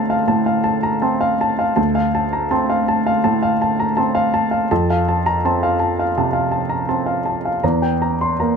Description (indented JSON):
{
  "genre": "neoclassical minimalist piano",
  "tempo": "77-85 BPM",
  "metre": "4/4",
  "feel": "rubato",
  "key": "D minor",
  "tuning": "A4 = 441 Hz",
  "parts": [
    { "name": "warm concert grand piano", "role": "solo", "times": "0.0-8.6 s", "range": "D2 to C6", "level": "-16 LUFS", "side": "equal", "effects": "none" }
  ],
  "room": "light reverb",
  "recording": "none",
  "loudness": "-16 LUFS",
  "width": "side -6 dB against mid",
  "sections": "0.0-8.6 A section",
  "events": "none",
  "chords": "0.0 Dm7; 4.7 F; 7.6 Edim",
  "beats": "0.27 1.03 | 1.77 2.51 3.24 3.97 | 4.70 5.44 6.15 6.88 | 7.62 8.39"
}